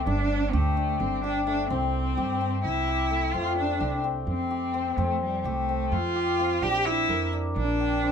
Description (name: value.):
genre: contemporary instrumental, chamber music in an uneven meter.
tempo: 256 BPM (eighths).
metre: 7/8.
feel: straight.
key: unclear.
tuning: A4 = 438 Hz.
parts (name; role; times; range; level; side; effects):
clear cello; melody; 0.0-8.1 s; G3 to G4; -27 LUFS; right 2 dB; none.
hammered dulcimer; arpeggios; 0.0-8.1 s; A3 to Bb4; -29 LUFS; left 6 dB; none.
upright bass; bass; 0.1-8.1 s; G1 to G2; -29 LUFS; right 1 dB; none.
room: moderate studio reverb, RT60 0.6 s.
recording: none.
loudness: -24 LUFS.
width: side -7 dB against mid.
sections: 0.0-3.3 A section; 3.3-8.1 B section.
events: none.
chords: 0.1 Gsus2; 1.7 C; 3.3 Fadd9; 6.6 Bb6.